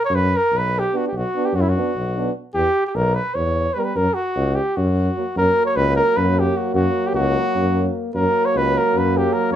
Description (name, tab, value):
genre	balkan folk, Balkan brass band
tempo	300 BPM (eighths)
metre	7/8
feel	straight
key	F# phrygian dominant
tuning	A4 = 440 Hz
part	warm flugelhorn	melody	0.0-9.6 s	E4 to C#5	-20 LUFS	equal	none
part	clear tuba	bass	0.1-9.6 s	B1 to F#2	-21 LUFS	left 1 dB	none
part	clear trombone	accompaniment	0.9-9.6 s	A#3 to D4	-27 LUFS	left 6 dB	none
part	warm euphonium	accompaniment	0.9-9.6 s	F#3 to B3	-26 LUFS	right 6 dB	none
room	moderate studio reverb, RT60 0.5 s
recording	band playing live in one room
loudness	-17 LUFS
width	side -10 dB against mid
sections	0.0-5.4 A section; 5.4-9.6 A section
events	none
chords	0.0 Bm; 2.5 Em; 3.9 F#5; 5.4 F#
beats	0.12 0.32 0.52 0.72 0.93 | 1.13 1.33 1.53 1.74 1.94 2.14 2.34 | 2.54 2.74 2.94 3.15 3.35 3.55 3.75 | 3.95 4.15 4.35 4.55 4.75 4.95 5.15 | 5.35 5.55 5.75 5.95 6.15 6.35 6.55 | 6.75 6.95 7.14 7.34 7.54 7.74 7.94 | 8.14 8.33 8.53 8.73 8.93 9.12 9.32 | 9.52